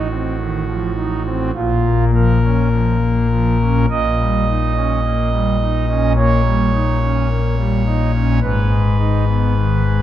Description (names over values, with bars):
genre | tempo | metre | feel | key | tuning
classical, chorale-style piece for pipe organ | 53 BPM | 4/4 | rubato | unclear | A4 = 440 Hz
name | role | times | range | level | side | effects
pipe organ, foundations | solo | 0.0-10.0 s | G#1 to D#5 | -14 LUFS | left 1 dB | none
room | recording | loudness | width
wet concert hall reverb, RT60 2.0 s | none | -14 LUFS | side -11 dB against mid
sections
0.0-10.0 A section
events
none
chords
0.0 F7/A; 1.5 Bbm; 3.9 D#7/A#; 8.4 G#m